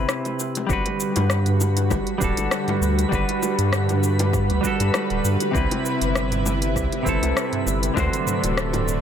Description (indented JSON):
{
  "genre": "sunset chillout",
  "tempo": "99 BPM",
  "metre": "4/4",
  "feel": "swing 54% on 16ths",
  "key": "G major",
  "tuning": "A4 = 440 Hz",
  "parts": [
    { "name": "semi-hollow electric guitar", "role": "accompaniment", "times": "0.0-9.0 s", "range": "C3 to C5", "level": "-25 LUFS", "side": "equal", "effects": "auto-pan, analog delay" },
    { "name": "round analog bass", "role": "bass", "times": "0.0-9.0 s", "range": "D1 to G2", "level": "-23 LUFS", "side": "equal", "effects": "none" },
    { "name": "deep house drum kit", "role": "drums", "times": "0.1-9.0 s", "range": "cabasa, hi-hat, rim click, toms", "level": "-27 LUFS", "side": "equal", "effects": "tape echo" },
    { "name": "bongos", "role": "percussion", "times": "0.3-8.8 s", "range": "none", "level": "-34 LUFS", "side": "left 4 dB", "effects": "none" },
    { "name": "lush unison pad", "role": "sustained chords", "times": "0.7-9.0 s", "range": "C3 to B4", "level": "-26 LUFS", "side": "equal", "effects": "chorus" },
    { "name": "electronic kick drum", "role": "drums", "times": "0.7-8.1 s", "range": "none", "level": "-27 LUFS", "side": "equal", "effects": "none" },
    { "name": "twinkling granular texture", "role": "texture", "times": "1.4-9.0 s", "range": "B4 to B5", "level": "-33 LUFS", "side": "right 1 dB", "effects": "built-in reverb" }
  ],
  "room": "moderate plate reverb, RT60 1.3 s, digital ambience",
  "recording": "echo-heavy mix",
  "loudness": "-19 LUFS",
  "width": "side -8 dB against mid",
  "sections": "0.0-9.0 A section",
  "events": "none",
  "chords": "0.0 Cmaj7; 0.7 Gmaj7; 5.5 Cmaj7; 8.0 D7"
}